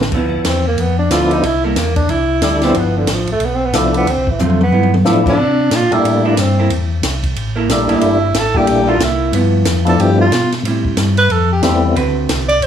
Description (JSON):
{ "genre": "soul jazz organ trio", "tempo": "182 BPM", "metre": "4/4", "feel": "swing 61% on 8ths", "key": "G mixolydian", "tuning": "A4 = 441 Hz", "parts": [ { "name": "archtop guitar, miked and amplified", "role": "accompaniment", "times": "0.0-12.5 s", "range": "D3 to B4", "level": "-20 LUFS", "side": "right 3 dB", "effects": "none" }, { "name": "mellow tonewheel organ", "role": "bass", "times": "0.0-12.7 s", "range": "G1 to C3", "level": "-17 LUFS", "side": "left 1 dB", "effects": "chorus vibrato, slow rotary speaker" }, { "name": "compact cocktail drum kit", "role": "drums", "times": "0.0-12.7 s", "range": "crash cymbal, hi-hat, kick drum, ride cymbal, snare drum, toms", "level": "-20 LUFS", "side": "equal", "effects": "none" }, { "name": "breathy tenor saxophone", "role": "melody", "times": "0.5-12.7 s", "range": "D3 to D5", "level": "-17 LUFS", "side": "right 2 dB", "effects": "none" }, { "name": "percussive tonewheel organ", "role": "melody", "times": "1.1-12.0 s", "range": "F3 to E4", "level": "-16 LUFS", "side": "left 3 dB", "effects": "slow rotary speaker, overdrive, chorus vibrato" } ], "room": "moderate large studio reverb, RT60 1.1 s", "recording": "small room ambience", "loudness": "-12 LUFS", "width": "side -9 dB against mid", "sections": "0.1-12.7 A section", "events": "tenor saxophone solo 0.1-12.7; drum fill 4.4-5.1", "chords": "0.1 Dm69; 1.4 C69; 2.8 G13; 4.1 Dm7; 4.7 G13; 5.4 C13; 9.3 G13; 10.6 Am7; 12.0 D13", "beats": "| 0.12 0.45 0.78 1.10 | 1.43 1.76 2.09 2.42 | 2.75 3.08 3.41 3.74 | 4.07 4.40 4.72 5.05 | 5.38 5.71 6.04 6.37 | 6.70 7.03 7.36 7.69 | 8.01 8.34 8.67 9.00 | 9.33 9.66 9.98 10.31 | 10.64 10.97 11.30 11.63 | 11.96 12.28 12.61" }